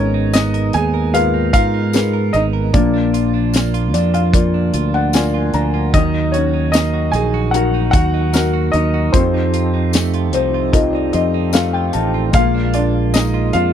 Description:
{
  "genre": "pop ballad",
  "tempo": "75 BPM",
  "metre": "4/4",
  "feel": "straight",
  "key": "Eb minor",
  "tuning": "A4 = 440 Hz",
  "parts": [
    { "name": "warm baby grand piano", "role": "melody", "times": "0.0-13.7 s", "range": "C4 to Ab5", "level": "-19 LUFS", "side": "left 1 dB", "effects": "tape echo" },
    { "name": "felt-muted upright piano", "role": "accompaniment", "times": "0.0-13.7 s", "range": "Eb3 to Bb5", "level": "-22 LUFS", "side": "left 8 dB", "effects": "none" },
    { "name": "mellow tonewheel organ", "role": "sustained chords", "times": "0.0-13.7 s", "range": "F3 to A4", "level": "-24 LUFS", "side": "right 3 dB", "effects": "overdrive, chorus vibrato, slow rotary speaker" },
    { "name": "direct-recorded clean electric guitar", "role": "arpeggios", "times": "0.0-13.7 s", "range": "F2 to Bb4", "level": "-24 LUFS", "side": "right 15 dB", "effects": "spring reverb" },
    { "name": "fingered electric bass", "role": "bass", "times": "0.0-13.7 s", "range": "Ab1 to Ab2", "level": "-18 LUFS", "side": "equal", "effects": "none" },
    { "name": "modern studio drum kit", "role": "drums", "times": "0.3-13.7 s", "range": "hi-hat, kick drum, snare drum", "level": "-17 LUFS", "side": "equal", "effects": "none" },
    { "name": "tambourine", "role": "percussion", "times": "0.3-13.3 s", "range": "none", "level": "-29 LUFS", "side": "left 20 dB", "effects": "none" }
  ],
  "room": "little or no reverb",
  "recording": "dry, close 1970s-style studio recording",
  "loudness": "-13 LUFS",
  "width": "side -9 dB against mid",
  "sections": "0.0-13.7 A section",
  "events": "felt piano fill 3.5-5.9, 9.9-12.3",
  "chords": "0.0 Abmadd9; 2.7 Bb; 5.9 Ebm; 9.1 F7; 12.3 Bb7"
}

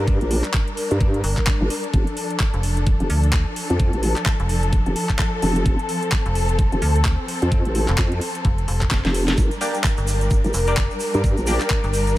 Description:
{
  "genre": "bass house",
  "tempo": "129 BPM",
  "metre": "4/4",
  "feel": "swing 59% on 16ths",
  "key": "unclear",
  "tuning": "A4 = 442 Hz",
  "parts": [
    { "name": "dark studio string section", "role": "sustained chords", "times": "0.0-12.2 s", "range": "F3 to Bb4", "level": "-26 LUFS", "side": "left 2 dB", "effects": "sidechain pumping, low-pass filter" },
    { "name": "vowel-sweep wobble bass", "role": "bass", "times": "0.0-11.6 s", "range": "F1 to G2", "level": "-20 LUFS", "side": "equal", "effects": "chorus, overdrive, sidechain pumping" },
    { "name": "electronic kick drum", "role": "drums", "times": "0.1-11.8 s", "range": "none", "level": "-20 LUFS", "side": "equal", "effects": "studio reverb" },
    { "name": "garage drum kit", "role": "drums", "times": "0.1-12.1 s", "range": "handclaps, hi-hat, snare drum", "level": "-28 LUFS", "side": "equal", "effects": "studio reverb" },
    { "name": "metallic FM bass", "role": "bass", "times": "1.2-12.2 s", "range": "F1 to D2", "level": "-20 LUFS", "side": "equal", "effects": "overdrive, sidechain pumping" },
    { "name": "tube shaker", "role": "percussion", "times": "9.4-12.2 s", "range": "none", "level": "-34 LUFS", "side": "right 2 dB", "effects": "none" },
    { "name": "band-passed chord stab", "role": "stabs", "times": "9.6-12.2 s", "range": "Bb3 to D5", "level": "-28 LUFS", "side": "left 1 dB", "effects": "chorus, phaser, sidechain pumping, tape echo" }
  ],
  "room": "light reverb",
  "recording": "none",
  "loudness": "-18 LUFS",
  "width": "side -16 dB against mid",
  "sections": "0.0-12.2 A section",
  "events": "drum fill 8.9-9.4",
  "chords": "0.0 Gm; 1.9 F6; 9.4 Gm"
}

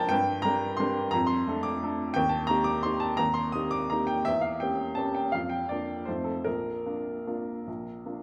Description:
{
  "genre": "classical, piano waltz",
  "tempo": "144-189 BPM",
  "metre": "3/4",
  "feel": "rubato",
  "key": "Bb major",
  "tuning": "A4 = 440 Hz",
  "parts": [
    { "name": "clear upright piano", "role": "solo", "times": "0.0-8.2 s", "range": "Bb1 to Eb6", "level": "-29 LUFS", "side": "equal", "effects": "none" }
  ],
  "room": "wet recital hall reverb, RT60 1.6 s",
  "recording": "none",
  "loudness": "-29 LUFS",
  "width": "mono",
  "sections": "0.0-8.2 A section",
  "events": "none",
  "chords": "0.1 Gm; 1.1 Dm/F; 2.2 Eb; 4.3 Edim7; 5.3 Bb/F; 6.1 F7; 6.5 Bb"
}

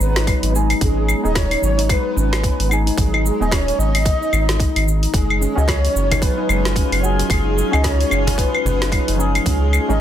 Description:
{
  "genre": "organic downtempo",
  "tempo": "111 BPM",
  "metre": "4/4",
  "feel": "swing 59% on 16ths",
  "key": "G# dorian",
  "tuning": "A4 = 445 Hz",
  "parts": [
    { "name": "breathy flute-like synth lead", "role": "melody", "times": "0.0-10.0 s", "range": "G#4 to D#5", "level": "-24 LUFS", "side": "equal", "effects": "ensemble chorus, tape echo" },
    { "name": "warbly tape-like pad", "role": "sustained chords", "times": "0.0-10.0 s", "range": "F#3 to A#5", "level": "-28 LUFS", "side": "equal", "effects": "chorus, built-in reverb, phaser, sidechain pumping" },
    { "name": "round analog bass", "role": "bass", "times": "0.0-10.0 s", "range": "D#1 to C#2", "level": "-19 LUFS", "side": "equal", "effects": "none" },
    { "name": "deep house drum kit", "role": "drums", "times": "0.0-10.0 s", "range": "cabasa, claves, hi-hat, snare drum", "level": "-22 LUFS", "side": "left 1 dB", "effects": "none" },
    { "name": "handpan", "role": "arpeggios", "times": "0.2-10.0 s", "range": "D#3 to D#4", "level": "-25 LUFS", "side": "left 3 dB", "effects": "digital delay" },
    { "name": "electronic kick drum", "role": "drums", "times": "0.3-9.6 s", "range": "none", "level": "-20 LUFS", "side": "equal", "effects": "none" },
    { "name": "deep mellow chord stab", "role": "accompaniment", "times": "0.5-10.0 s", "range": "E#3 to G#4", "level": "-26 LUFS", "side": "right 1 dB", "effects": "chorus, sidechain pumping, digital delay" },
    { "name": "drifting glass-harmonics texture", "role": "texture", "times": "6.0-10.0 s", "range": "E#4 to E#5", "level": "-32 LUFS", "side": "left 4 dB", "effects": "chorus, built-in reverb" },
    { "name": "cajon", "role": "percussion", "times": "6.1-8.8 s", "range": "none", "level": "-25 LUFS", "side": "right 2 dB", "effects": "none" }
  ],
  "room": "light reverb, digital ambience",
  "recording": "dense, heavily limited modern master",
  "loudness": "-15 LUFS",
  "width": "side -10 dB against mid",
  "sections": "0.0-10.0 A section",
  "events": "none",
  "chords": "0.0 G#m; 5.1 F#sus2; 9.5 C#add9"
}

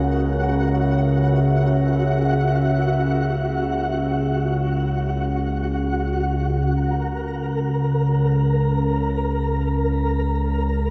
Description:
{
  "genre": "dark ambient drone",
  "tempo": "free time",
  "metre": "none",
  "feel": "none",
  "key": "unclear",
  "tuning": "A4 = 440 Hz",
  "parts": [
    { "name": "dark analog pad", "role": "sustained chords", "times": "0.0-6.7 s", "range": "C#4 to F#5", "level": "-32 LUFS", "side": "equal", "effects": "chorus, shimmer reverb" },
    { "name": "analog drone", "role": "drone", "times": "0.0-10.9 s", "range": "C#2 to C#3", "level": "-22 LUFS", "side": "equal", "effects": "chorus" },
    { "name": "flickering grainy texture", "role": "texture", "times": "0.0-10.9 s", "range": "F#4 to A#5", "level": "-28 LUFS", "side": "equal", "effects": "built-in reverb, shimmer reverb" }
  ],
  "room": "wet cathedral reverb, RT60 6.0 s",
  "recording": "none",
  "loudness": "-21 LUFS",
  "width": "mono",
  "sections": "0.0-6.7 A section; 6.7-10.9 B section",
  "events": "none",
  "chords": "0.0 F#; 6.7 F# (rootless)"
}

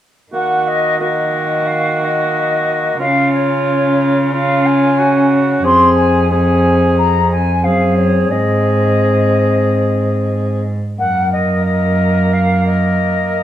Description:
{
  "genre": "classical, renaissance-style consort dance",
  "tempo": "90 BPM",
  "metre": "4/4",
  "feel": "straight",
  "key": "Eb dorian",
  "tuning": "A4 = 440 Hz",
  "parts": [
    { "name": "mellow hollow silver concert flute", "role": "melody", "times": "0.3-13.4 s", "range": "Db5 to C6", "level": "-17 LUFS", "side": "left 2 dB", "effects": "none" },
    { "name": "warm cor anglais", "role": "second line", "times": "0.3-13.4 s", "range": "F4 to Bb4", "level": "-20 LUFS", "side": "right 3 dB", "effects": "none" },
    { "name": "dark bassoon", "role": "accompaniment", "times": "0.3-13.4 s", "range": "Bb3 to Db4", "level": "-18 LUFS", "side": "left 1 dB", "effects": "none" },
    { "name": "rich cello", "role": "bass", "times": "0.3-13.4 s", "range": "F2 to Eb3", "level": "-16 LUFS", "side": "right 1 dB", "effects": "none" }
  ],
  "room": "wet stone room reverb, RT60 1.0 s",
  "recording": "heard from further back in the room",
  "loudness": "-12 LUFS",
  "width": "side -11 dB against mid",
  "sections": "0.3-13.4 A section",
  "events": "none",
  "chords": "0.3 Ebm; 3.0 Db; 5.6 Fm; 8.3 Ab; 11.0 Gb"
}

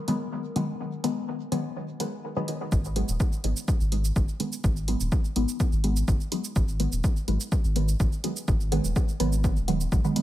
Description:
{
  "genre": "dub techno",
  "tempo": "125 BPM",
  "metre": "4/4",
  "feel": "straight",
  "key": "G# minor",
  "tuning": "A4 = 440 Hz",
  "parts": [
    { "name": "dark analog pad", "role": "sustained chords", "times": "0.0-2.7 s", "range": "B3 to A#4", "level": "-47 LUFS", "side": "left 2 dB", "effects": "chorus, sidechain pumping" },
    { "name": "filtered dub chord stab", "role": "stabs", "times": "0.1-10.2 s", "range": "D#3 to B3", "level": "-30 LUFS", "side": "equal", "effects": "phaser, sidechain pumping, dub echo" },
    { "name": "electronic hi-hat and cabasa", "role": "drums", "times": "0.1-10.2 s", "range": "none", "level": "-36 LUFS", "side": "right 3 dB", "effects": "overdrive, studio reverb" },
    { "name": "round analog bass", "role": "bass", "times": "2.7-10.0 s", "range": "D#1 to G#1", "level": "-26 LUFS", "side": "equal", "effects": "sidechain pumping" },
    { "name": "electronic kick drum", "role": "drums", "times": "2.7-10.0 s", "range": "none", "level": "-24 LUFS", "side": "equal", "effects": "overdrive, studio reverb" }
  ],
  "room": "light reverb, digital ambience",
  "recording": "echo-heavy mix",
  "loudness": "-24 LUFS",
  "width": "side -14 dB against mid",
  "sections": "0.0-2.7 A section; 2.7-10.2 B section",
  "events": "none",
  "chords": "0.0 G#m7"
}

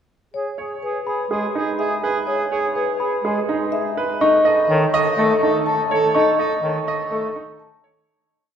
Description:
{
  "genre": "classical, minimalist pattern music",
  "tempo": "124 BPM",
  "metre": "4/4",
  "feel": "straight",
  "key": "E major",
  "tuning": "A4 = 440 Hz",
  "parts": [
    { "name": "marimba with soft mallets", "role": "melody", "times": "0.3-7.9 s", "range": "A4 to A5", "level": "-22 LUFS", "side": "left 3 dB", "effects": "none" },
    { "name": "warm soprano saxophone", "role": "second line", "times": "0.3-7.8 s", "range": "G#4 to A4", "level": "-24 LUFS", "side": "right 3 dB", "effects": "none" },
    { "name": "clear grand piano", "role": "arpeggios", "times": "0.6-8.2 s", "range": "D#4 to D#5", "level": "-23 LUFS", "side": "right 3 dB", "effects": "none" },
    { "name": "glockenspiel with rubber mallets", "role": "arpeggios", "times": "1.1-7.7 s", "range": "B5 to C#6", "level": "-28 LUFS", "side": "right 1 dB", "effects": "none" },
    { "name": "bright bass clarinet", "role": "accompaniment", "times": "1.3-7.3 s", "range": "D#3 to A3", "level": "-27 LUFS", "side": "equal", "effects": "none" }
  ],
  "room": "wet cathedral reverb, RT60 4.5 s",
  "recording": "dark, warm production",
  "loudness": "-17 LUFS",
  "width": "side -8 dB against mid",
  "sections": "0.3-8.1 A section",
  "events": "fade-out 6.1-8.1",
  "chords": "0.3 Emaj7 (rootless); 4.2 A"
}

